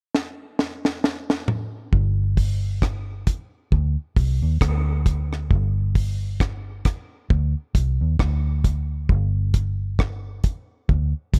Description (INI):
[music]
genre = dub reggae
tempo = 67 BPM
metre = 4/4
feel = swing 58% on 16ths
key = unclear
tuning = A4 = 440 Hz
[part]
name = deep reggae drum kit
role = drums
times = 0.1-11.4 s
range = hi-hat, kick drum, rim click, snare drum, toms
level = -23 LUFS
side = equal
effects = none
[part]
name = vintage muted fingered electric bass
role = bass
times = 1.9-11.4 s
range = G1 to Eb2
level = -24 LUFS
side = equal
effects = none
[sound]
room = little or no reverb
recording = none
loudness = -23 LUFS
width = mono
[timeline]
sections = 0.0-1.9 A section; 1.9-11.4 B section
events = drum fill 0.1-1.9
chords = none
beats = 0.14 1.03 | 1.93 2.82 3.72 4.62 | 5.51 6.41 7.30 8.20 | 9.10 9.99 10.89